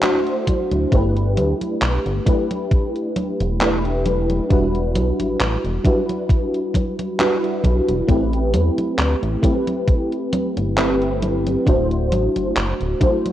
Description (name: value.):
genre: vaporwave.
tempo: 67 BPM.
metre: 4/4.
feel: swing 54% on 16ths.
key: A dorian.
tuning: A4 = 440 Hz.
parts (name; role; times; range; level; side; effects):
mellow FM electric piano; accompaniment; 0.0-13.3 s; G3 to C5; -20 LUFS; equal; ensemble chorus, analog delay.
gated 80s digital drum machine; drums; 0.0-13.3 s; congas, handclaps, hi-hat; -25 LUFS; equal; gated reverb.
electronic kick drum; drums; 0.5-13.2 s; none; -18 LUFS; equal; none.
chorused synth bass; bass; 0.7-12.9 s; D1 to E2; -22 LUFS; equal; none.
room: light reverb.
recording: cassette tape.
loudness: -17 LUFS.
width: side -12 dB against mid.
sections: 0.0-13.3 A section.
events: none.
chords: 0.0 D9; 0.9 G69; 4.5 Em9; 8.1 Am9; 11.7 D9.